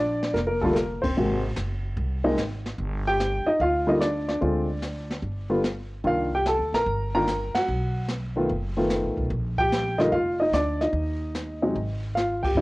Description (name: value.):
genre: jazz piano trio.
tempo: 147 BPM.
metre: 4/4.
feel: swing 67% on 8ths.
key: Bb major.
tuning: A4 = 441 Hz.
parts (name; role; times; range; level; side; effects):
warm baby grand piano; melody; 0.0-12.6 s; C3 to Bb5; -23 LUFS; equal; cassette tape.
upright bass; bass; 0.0-12.6 s; F1 to Ab2; -30 LUFS; equal; none.
jazz brush drum kit; drums; 0.2-12.6 s; brushed snare drum, hi-hat, kick drum, ride cymbal, snare drum; -33 LUFS; equal; cassette tape.
room: light reverb.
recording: home recording on cassette.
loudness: -23 LUFS.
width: side -21 dB against mid.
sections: 0.0-12.6 A section.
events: band accent 1.0, 7.5, 12.4; drum fill 12.2-12.6.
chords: 0.0 Bb; 1.2 Ab9; 2.8 G7(no3); 4.4 Dm7b5; 5.2 G5; 6.0 Cm11; 7.7 B7#11; 9.3 Bb6; 10.9 N.C.; 11.8 Ab5.